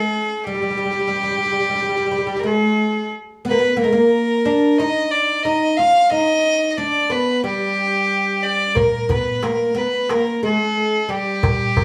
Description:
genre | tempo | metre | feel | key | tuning
Arabic maqam ensemble | 90 BPM | 4/4 | straight | G maqam saba | A4 = 440 Hz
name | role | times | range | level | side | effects
rich violin | melody | 0.0-11.8 s | G4 to F5 | -21 LUFS | equal | none
oud | second line | 0.0-11.8 s | G3 to F4 | -23 LUFS | equal | none
darbuka | percussion | 8.8-11.8 s | none | -23 LUFS | equal | none
room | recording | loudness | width
wet studio reverb, RT60 0.6 s | band playing live in one room, small room ambience | -19 LUFS | mono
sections
0.0-11.8 A section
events
none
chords
none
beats
0.14 | 0.80 1.46 2.13 2.79 | 3.45 4.12 4.78 5.45 | 6.11 6.77 7.44 8.10 | 8.77 9.44 10.10 10.77 | 11.43

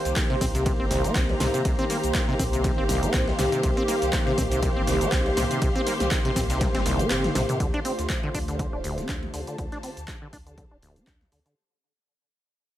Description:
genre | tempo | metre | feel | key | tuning
acid house | 121 BPM | 4/4 | swing 55% on 16ths | D phrygian | A4 = 442 Hz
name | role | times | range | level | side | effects
warm analog pad | sustained chords | 0.0-11.5 s | D3 to C5 | -30 LUFS | equal | chorus, sidechain pumping
rich studio string section | texture | 0.0-11.6 s | G4 to C6 | -30 LUFS | left 1 dB | sidechain pumping
warm sub bass | bass | 0.1-11.4 s | D1 to D2 | -31 LUFS | equal | sidechain pumping
breakbeat sampler-style drum kit | drums | 0.1-11.6 s | hi-hat, ride cymbal, snare drum | -42 LUFS | right 1 dB | none
punchy analog drum machine | drums | 0.1-11.6 s | handclaps, hi-hat, ride cymbal, shaker, snare drum, toms | -31 LUFS | equal | overdrive
electronic kick drum | drums | 0.2-11.2 s | none | -27 LUFS | equal | none
acid bass, saw | riff | 0.3-11.5 s | C2 to D4 | -30 LUFS | equal | tube saturation, sidechain pumping, dub echo
room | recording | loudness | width
moderate studio reverb, RT60 0.5 s | none | -22 LUFS | side -13 dB against mid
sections
0.0-7.6 A section; 7.6-11.6 B section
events
drop 0.0-7.6; drum fill 6.6-7.6; kick drops out 7.1-7.6; fade-out 7.6-11.6; filter sweep on acid bass 7.6-11.6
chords
0.0 Cm7; 7.6 Dm7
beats
0.16 0.66 1.16 | 1.65 2.15 2.64 3.14 | 3.63 4.13 4.63 5.12 | 5.62 6.11 6.61 7.11 | 7.60 8.10 8.59 9.09 | 9.59 10.08 10.58 11.07

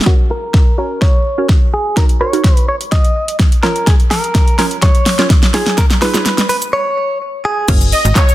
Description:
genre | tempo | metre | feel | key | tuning
dance-pop | 126 BPM | 4/4 | straight | unclear | A4 = 440 Hz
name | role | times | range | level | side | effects
pop drum kit | drums | 0.0-8.3 s | crash cymbal, handclaps, hi-hat, kick drum, shaker, snare drum | -11 LUFS | equal | none
direct-recorded clean electric guitar | melody | 0.1-7.7 s | Gb4 to Eb5 | -18 LUFS | equal | low-pass filter, ping-pong delay
hollow square pluck | accompaniment | 0.1-8.3 s | Bb3 to Db5 | -20 LUFS | right 3 dB | chorus, sidechain pumping, low-pass filter
slap-like FM bass | bass | 7.7-8.1 s | Gb1 to Ab1 | -13 LUFS | equal | sidechain pumping
soft supersaw | melody | 7.9-8.3 s | Db5 to Eb5 | -14 LUFS | equal | none
room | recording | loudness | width
light reverb | dense, heavily limited modern master | -11 LUFS | side -15 dB against mid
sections
0.1-7.7 A section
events
build-up 0.1-7.7; drum fill 0.1-6.7; filter sweep 0.1-7.7; break 6.7-7.7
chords
0.1 Gb; 2.0 Ebm7; 3.6 Bbm; 5.5 Dbadd9; 7.7 Gb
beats
| 0.07 0.54 1.02 1.49 | 1.97 2.45 2.92 3.40 | 3.88 4.35 4.83 5.30 | 5.78 6.26 6.73 7.21 | 7.68 8.16

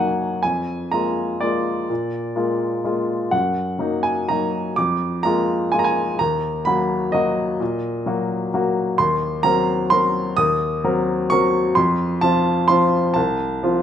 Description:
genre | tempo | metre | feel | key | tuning
classical, piano waltz | 127 BPM | 3/4 | uneven beats, rubato | Eb minor | A4 = 440 Hz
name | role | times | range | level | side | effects
clear baby grand piano | solo | 0.0-13.8 s | C2 to Eb6 | -18 LUFS | equal | none
room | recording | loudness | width
moderate large studio reverb, RT60 1.3 s | none | -18 LUFS | side -9 dB against mid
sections
0.0-13.8 A section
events
none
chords
0.4 Bb7/F; 3.3 Ebm/Gb; 4.8 Bb7/F; 6.2 Ebm; 9.0 Cm7b5/Eb; 11.8 F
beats
| 0.44 0.92 1.42 | 1.89 2.37 2.85 | 3.33 3.81 4.29 | 4.77 5.24 5.72 | 6.20 6.66 7.14 | 7.60 8.05 8.53 | 8.98 9.44 9.91 | 10.37 10.83 11.30 | 11.76 12.21 12.68 | 13.15 13.62

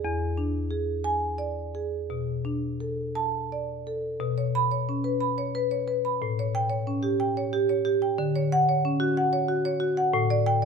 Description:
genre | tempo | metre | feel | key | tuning
classical, contemporary piece for solo marimba | 56-62 BPM (dotted quarters) | 6/8 | rubato | B minor | A4 = 440 Hz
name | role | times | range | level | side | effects
marimba with medium hard mallets | solo | 0.0-10.7 s | E2 to B5 | -24 LUFS | equal | none
room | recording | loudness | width
moderate recital hall reverb, RT60 1.5 s | close, detailed microphones | -24 LUFS | side -6 dB against mid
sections
0.0-4.2 A section; 4.2-10.7 A section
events
none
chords
0.0 E7; 2.1 Bm7; 4.2 Bsus2; 6.2 A7; 8.2 Dmaj7; 10.1 A7sus4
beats
| 0.03 1.04 | 2.10 3.16 | 4.21 5.23 | 6.22 7.21 | 8.19 9.17 | 10.14

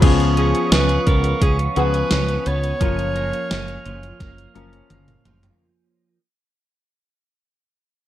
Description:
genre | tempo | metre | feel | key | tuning
1980s-style pop | 86 BPM | 4/4 | straight | Db mixolydian | A4 = 440 Hz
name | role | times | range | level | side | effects
warm grand piano | accompaniment | 0.0-5.6 s | F3 to Bb4 | -25 LUFS | left 12 dB | none
mellow woodwind section | sustained chords | 0.0-5.6 s | Cb4 to F6 | -28 LUFS | right 5 dB | none
twelve-string electric guitar | riff | 0.0-6.2 s | F3 to Ab4 | -27 LUFS | right 3 dB | ensemble chorus, slapback echo
woody fretless electric bass | bass | 0.0-5.5 s | Gb1 to Db2 | -21 LUFS | equal | none
gated 80s digital drum machine | drums | 0.0-5.6 s | crash cymbal, hi-hat, kick drum, snare drum, toms | -19 LUFS | equal | gated reverb, gated reverb snare, overdrive
clear alto saxophone | melody | 0.4-4.9 s | Ab4 to Db5 | -25 LUFS | right 1 dB | slapback echo
room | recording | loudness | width
little or no reverb | dry, close 1970s-style studio recording | -16 LUFS | side -13 dB against mid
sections
0.0-5.6 A section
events
fade-out 0.0-5.6; drum fill 4.2-5.6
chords
0.0 Db7; 2.8 Gbmaj7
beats
| 0.02 0.72 1.42 2.11 | 2.81 3.51 4.21 4.91

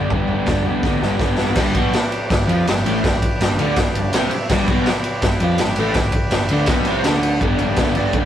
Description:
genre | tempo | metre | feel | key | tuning
garage rock duo or trio | 164 BPM | 4/4 | straight | G major | A4 = 440 Hz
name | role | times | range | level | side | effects
overdriven combo organ | sustained chords | 0.0-8.3 s | G4 to A5 | -26 LUFS | equal | none
crunchy overdriven guitar | riff | 0.0-8.3 s | G2 to F4 | -20 LUFS | equal | none
growling picked electric bass | bass | 0.0-8.3 s | G1 to F2 | -25 LUFS | equal | overdrive
raw garage drum kit | drums | 0.1-8.2 s | crash cymbal, kick drum, ride cymbal, snare drum, toms | -19 LUFS | equal | none
room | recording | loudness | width
moderate stone room reverb, RT60 1.0 s | rough rehearsal-room recording, warm saturation | -16 LUFS | side -10 dB against mid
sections
0.0-1.6 A section; 1.6-7.4 B section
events
drum fill 0.8-1.6; transistor combo organ fill 3.7-4.5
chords
0.0 G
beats
| 0.09 0.46 0.82 1.19 | 1.55 1.92 2.28 2.65 | 3.01 3.38 3.74 4.11 | 4.47 4.84 5.21 5.57 | 5.94 6.30 6.67 7.03 | 7.40 7.76 8.13

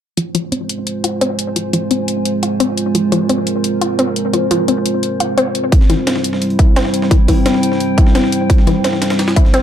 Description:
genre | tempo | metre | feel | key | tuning
dark technical drum and bass | 173 BPM | 4/4 | straight | F harmonic minor | A4 = 440 Hz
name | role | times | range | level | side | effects
dark analog pad | sustained chords | 0.6-9.6 s | G3 to C5 | -18 LUFS | right 2 dB | chorus, sidechain pumping
analog pluck | arpeggios | 0.2-9.6 s | E3 to F4 | -18 LUFS | left 2 dB | chorus, sidechain pumping, digital delay
electronic hi-hat | drums | 0.2-9.6 s | none | -22 LUFS | left 2 dB | none
warbly tape-like pad | texture | 1.4-9.6 s | E4 to Ab5 | -24 LUFS | left 1 dB | chorus, built-in reverb, phaser, sidechain pumping
breakbeat sampler-style drum kit | drums | 5.7-9.6 s | hi-hat, snare drum | -23 LUFS | equal | high-pass filter on hats, high-pass filter on snare
electronic kick drum | drums | 5.7-9.4 s | none | -11 LUFS | equal | overdrive
room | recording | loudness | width
moderate plate reverb, RT60 1.0 s, digital ambience | dark, warm production | -13 LUFS | side -10 dB against mid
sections
0.2-9.6 A section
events
fade-in on ambient pad 0.2-9.6; filter sweep on synth arpeggio sound 0.2-9.6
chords
0.2 Fm; 5.7 C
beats
| 0.17 0.52 0.87 1.21 | 1.56 1.91 2.25 2.60 | 2.95 3.29 3.64 3.99 | 4.34 4.68 5.03 5.38 | 5.72 6.07 6.42 6.76 | 7.11 7.46 7.80 8.15 | 8.50 8.84 9.19 9.54

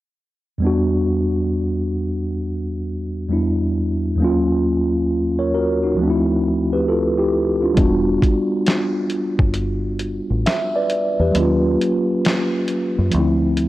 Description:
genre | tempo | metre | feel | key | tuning
lo-fi hip hop | 67 BPM | 4/4 | swing 65% on 16ths | E minor | A4 = 440 Hz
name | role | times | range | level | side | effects
mellow tine electric piano | accompaniment | 0.6-13.7 s | D2 to E5 | -18 LUFS | equal | medium stereo tremolo
deep dub fingered electric bass | bass | 7.8-13.7 s | E1 to F#2 | -21 LUFS | equal | none
boom bap sampler-style drum kit | drums | 7.8-13.7 s | hi-hat, kick drum, snare drum | -20 LUFS | equal | none
room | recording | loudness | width
light reverb, digital ambience | worn, warbling old tape, cassette tape, warbly pitch drift | -17 LUFS | side -16 dB against mid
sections
0.6-13.7 A section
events
kick muted 11.4-13.7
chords
0.6 Em9; 4.2 D#m9; 6.0 Dm9; 7.8 Em9; 11.4 D#m9; 13.1 Dm9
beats
| 0.61 1.50 2.40 3.29 | 4.19 5.08 5.98 6.88 | 7.77 8.67 9.56 10.46 | 11.35 12.25 13.14

